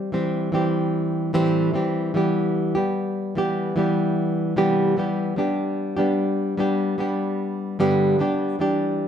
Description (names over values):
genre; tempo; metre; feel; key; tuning
pop; 74 BPM; 4/4; straight; G major; A4 = 437 Hz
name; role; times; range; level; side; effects
flamenco guitar; solo; 0.0-9.1 s; G2 to G4; -20 LUFS; equal; none
room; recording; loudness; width
moderate stone room reverb, RT60 1.1 s; band playing live in one room; -20 LUFS; side -8 dB against mid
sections
0.0-9.1 A section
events
none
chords
0.0 Am7; 2.1 Cmaj7; 5.4 G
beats
0.53 1.34 | 2.15 2.95 3.76 4.57 | 5.38 6.18 6.99 7.80 | 8.60